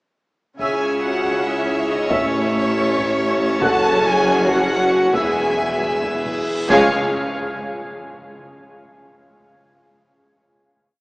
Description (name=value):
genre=cinematic, epic orchestral film score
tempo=275 BPM (eighths)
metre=7/8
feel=straight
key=C# minor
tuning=A4 = 441 Hz
part: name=dark symphonic violin section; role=melody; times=0.6-7.0 s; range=C#5 to E#5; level=-28 LUFS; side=equal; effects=none
part: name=warm symphonic violin section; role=second line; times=0.6-7.0 s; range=C#5 to A5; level=-23 LUFS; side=equal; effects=none
part: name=rich symphonic viola section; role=accompaniment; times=0.6-7.0 s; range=G#3 to G#4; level=-28 LUFS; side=equal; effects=none
part: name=mellow French horn section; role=sustained chords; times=0.6-6.9 s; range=C#4 to C#5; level=-24 LUFS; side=equal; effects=none
part: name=mellow trombone section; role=sustained chords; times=0.6-6.9 s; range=C#3 to C#4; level=-32 LUFS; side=equal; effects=none
part: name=pipe organ, full organ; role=sustained chords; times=0.6-7.0 s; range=C#4 to F#5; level=-24 LUFS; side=equal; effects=none
part: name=mellow trumpet section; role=stabs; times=0.6-6.9 s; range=E5 to G#5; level=-26 LUFS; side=equal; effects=none
part: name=mellow tuba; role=bass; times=0.6-6.9 s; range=E1 to C#2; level=-24 LUFS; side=equal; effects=none
part: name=rich symphonic cello section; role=bass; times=0.6-7.0 s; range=C#2 to C#3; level=-28 LUFS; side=equal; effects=none
part: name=rich symphonic double bass section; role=bass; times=0.6-7.0 s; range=E1 to C#2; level=-32 LUFS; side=equal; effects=none
part: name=taiko ensemble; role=drums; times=0.6-6.8 s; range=none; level=-30 LUFS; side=equal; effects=none
part: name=reverse cymbal and impact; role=sound effects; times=6.2-8.3 s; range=none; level=-37 LUFS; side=equal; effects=none
room=wet church reverb, RT60 3.5 s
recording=recorded in a church or concert hall, small speaker sound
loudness=-16 LUFS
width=side -25 dB against mid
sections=0.6-6.7 theme; 6.7-8.3 final chord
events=reverse cymbal 6.2-6.7; impact 6.7-8.3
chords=0.6 C#m; 2.1 A; 3.6 F#m; 5.1 E; 6.7 C#